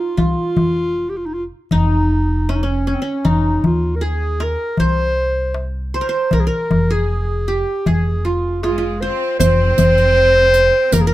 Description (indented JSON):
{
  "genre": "Turkish makam ensemble",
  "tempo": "78 BPM",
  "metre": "4/4",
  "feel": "straight",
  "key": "F makam nihavent",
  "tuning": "A4 = 440 Hz",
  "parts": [
    { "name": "dark clarinet", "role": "melody", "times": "0.0-11.1 s", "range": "C4 to C5", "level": "-18 LUFS", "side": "equal", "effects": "plate reverb" },
    { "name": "qanun", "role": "second line", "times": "0.0-11.1 s", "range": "Db4 to C5", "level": "-24 LUFS", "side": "right 2 dB", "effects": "none" },
    { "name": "upright bass", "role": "bass", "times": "0.2-11.1 s", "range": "F1 to Eb2", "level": "-19 LUFS", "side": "equal", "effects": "none" },
    { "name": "darbuka", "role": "percussion", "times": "0.2-11.1 s", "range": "none", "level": "-19 LUFS", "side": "left 2 dB", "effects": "none" },
    { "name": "bright symphonic cello section", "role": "second line", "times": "8.6-11.1 s", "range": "Ab3 to C4", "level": "-25 LUFS", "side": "equal", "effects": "none" },
    { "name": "riq", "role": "percussion", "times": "9.4-11.1 s", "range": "none", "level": "-24 LUFS", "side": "right 7 dB", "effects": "none" }
  ],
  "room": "moderate small room ambience, RT60 0.5 s",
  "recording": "close, detailed microphones",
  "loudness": "-14 LUFS",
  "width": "side -15 dB against mid",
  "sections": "0.0-9.4 A section; 9.4-11.1 B section",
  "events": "none",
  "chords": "none",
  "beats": "| 0.18 0.95 1.72 2.49 | 3.25 4.02 4.79 5.56 | 6.33 7.09 7.86 8.63 | 9.39 10.16 10.92"
}